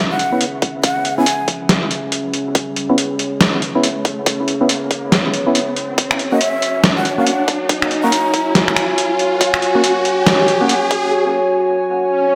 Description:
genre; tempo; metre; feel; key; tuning
deep dubstep; 140 BPM; 4/4; swing 61% on 16ths, half-time; C# dorian; A4 = 440 Hz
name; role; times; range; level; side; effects
breathy mellow shakuhachi; melody; 0.0-1.5, 6.3-8.6 s; E5 to A#5; -24 LUFS; equal; dub echo
dark analog pad; sustained chords; 0.2-12.4 s; C#4 to G#5; -22 LUFS; equal; chorus
riser and swell; sound effects; 0.6-12.4 s; none; -26 LUFS; equal; none
trip hop sampler-style drum kit; drums; 0.2-11.0 s; finger snaps, hi-hat, snare drum; -19 LUFS; equal; none
percussive organ stab; stabs; 0.3-10.7 s; A#3 to F#4; -23 LUFS; equal; subtle chorus, dub echo
electronic kick drum; drums; 0.6-11.0 s; none; -22 LUFS; equal; overdrive, high-pass filter on kick, high-pass filter on room
room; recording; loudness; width
wet echo chamber reverb, RT60 1.6 s, digital ambience; none; -16 LUFS; mono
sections
0.0-12.4 A section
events
build-up 0.0-12.4; filter sweep on synth stab 0.0-12.4; filter sweep on analog synth pad 0.0-12.4; riser 0.6-11.1; break 11.1-12.4; swell 12.1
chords
0.0 C#m7; 6.0 F#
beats
0.41 | 0.84 1.26 1.69 2.12 | 2.55 2.98 3.41 3.84 | 4.26 4.69 5.12 5.55 | 5.98 6.41 6.84 7.26 | 7.69 8.12 8.55 8.98 | 9.41 9.84 10.27 10.69 | 11.12 11.55 11.98

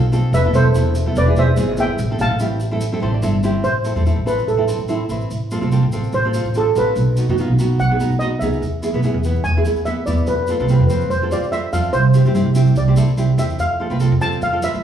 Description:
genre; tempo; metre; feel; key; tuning
calypso; 145 BPM; 4/4; swing 54% on 16ths; A minor; A4 = 440 Hz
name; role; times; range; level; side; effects
steel pan; melody; 0.0-14.8 s; E4 to A5; -21 LUFS; right 1 dB; none
nylon-string guitar; accompaniment; 0.0-14.8 s; B3 to E5; -23 LUFS; equal; none
upright bass; bass; 0.0-14.8 s; E1 to G2; -17 LUFS; right 1 dB; none
tube shaker; percussion; 0.1-14.8 s; none; -39 LUFS; right 1 dB; none
room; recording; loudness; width
wet recital hall reverb, RT60 1.3 s; recorded in a church or concert hall, studio ambience; -15 LUFS; side -9 dB against mid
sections
0.0-3.6 A section; 3.6-14.8 B section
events
nylon-string guitar fill 2.8-3.6; steel pan solo 3.6-14.8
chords
0.3 Esus4; 1.2 E; 2.0 Am; 5.3 F/A; 7.0 B; 8.6 E; 10.3 F; 11.9 Cadd9; 13.6 F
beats
| 0.34 0.75 1.17 1.58 | 1.99 2.41 2.82 3.23 | 3.65 4.06 4.48 4.89 | 5.31 5.72 6.13 6.55 | 6.96 7.38 7.79 8.21 | 8.62 9.04 9.45 9.87 | 10.28 10.70 11.11 11.53 | 11.94 12.35 12.77 13.18 | 13.59 14.01 14.42 14.83

